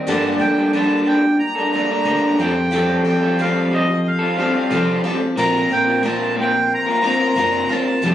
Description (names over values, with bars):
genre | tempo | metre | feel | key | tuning
folk rock and heartland rock | 90 BPM | 4/4 | straight | G minor | A4 = 441 Hz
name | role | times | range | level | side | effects
picked steel-string acoustic guitar | accompaniment | 0.0-8.1 s | G2 to Bb4 | -21 LUFS | left 2 dB | none
mellow tonewheel organ | sustained chords | 0.0-8.1 s | G4 to D6 | -34 LUFS | equal | none
electric guitar through a small old amp | riff | 0.0-8.1 s | G2 to Bb4 | -20 LUFS | right 1 dB | none
accordion | melody | 0.1-8.1 s | Eb5 to Bb5 | -20 LUFS | equal | none
fingered electric bass | bass | 0.1-8.1 s | F1 to G3 | -28 LUFS | equal | none
room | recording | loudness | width
light reverb | recorded on a phone in the room, studio reverb, compression | -15 LUFS | side -11 dB against mid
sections
0.1-8.1 A section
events
none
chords
0.1 Gmadd9; 2.4 Fadd9; 5.4 Bbsus2